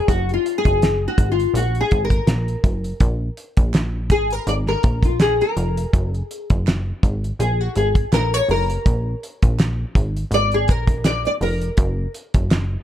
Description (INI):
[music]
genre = indie pop, bedroom pop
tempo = 82 BPM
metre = 4/4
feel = swing 55% on 16ths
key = F# major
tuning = A4 = 440 Hz
[part]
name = nylon-string guitar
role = accompaniment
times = 0.0-12.1 s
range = E#4 to D5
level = -21 LUFS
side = left 2 dB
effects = analog chorus, warbly pitch drift
[part]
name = plucky analog bass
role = bass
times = 0.1-12.8 s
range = E#1 to A#1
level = -22 LUFS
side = equal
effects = none
[part]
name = cloth-damped thuddy drum kit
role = drums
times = 0.1-12.7 s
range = hi-hat, kick drum, snare drum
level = -18 LUFS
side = equal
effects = none
[part]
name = group handclap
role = percussion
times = 3.7-12.7 s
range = none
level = -36 LUFS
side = right 13 dB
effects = none
[sound]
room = small room ambience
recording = none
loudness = -17 LUFS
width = side -11 dB against mid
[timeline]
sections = 0.0-12.8 A section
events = nylon-string guitar solo 0.0-12.8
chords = 0.1 F#; 3.0 A#5; 5.9 F#; 8.9 A#5; 11.8 F#